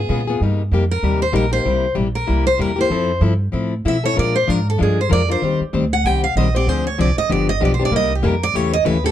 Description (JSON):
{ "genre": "acoustic string swing (jazz manouche)", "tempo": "192 BPM", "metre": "4/4", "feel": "swing 59% on 8ths", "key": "C minor", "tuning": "A4 = 439 Hz", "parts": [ { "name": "upright bass", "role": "bass", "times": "0.0-9.1 s", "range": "G1 to B2", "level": "-20 LUFS", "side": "right 1 dB", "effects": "none" }, { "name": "picked plugged-in steel-string acoustic guitar", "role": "accompaniment", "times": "0.1-9.1 s", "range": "C3 to C5", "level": "-20 LUFS", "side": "left 4 dB", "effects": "none" }, { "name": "picked steel-string acoustic guitar", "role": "melody", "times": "0.9-9.1 s", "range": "G4 to G5", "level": "-20 LUFS", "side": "right 2 dB", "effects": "none" } ], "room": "light reverb", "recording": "dark, warm production", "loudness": "-15 LUFS", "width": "side -11 dB against mid", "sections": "0.4-9.1 A section", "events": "steel-string acoustic guitar solo 0.4-9.1", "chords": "0.4 Cm7; 1.7 C7; 2.9 Fmaj7; 4.2 Bb7; 5.4 Eb6; 6.7 Dm7b5; 7.3 G7; 7.9 Cm7; 8.6 A7", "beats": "0.10 | 0.41 0.73 1.04 1.35 | 1.66 1.98 2.29 2.60 | 2.92 3.23 3.54 3.85 | 4.17 4.48 4.79 5.11 | 5.42 5.73 6.05 6.36 | 6.67 6.99 7.30 7.61 | 7.93 8.24 8.55 8.87" }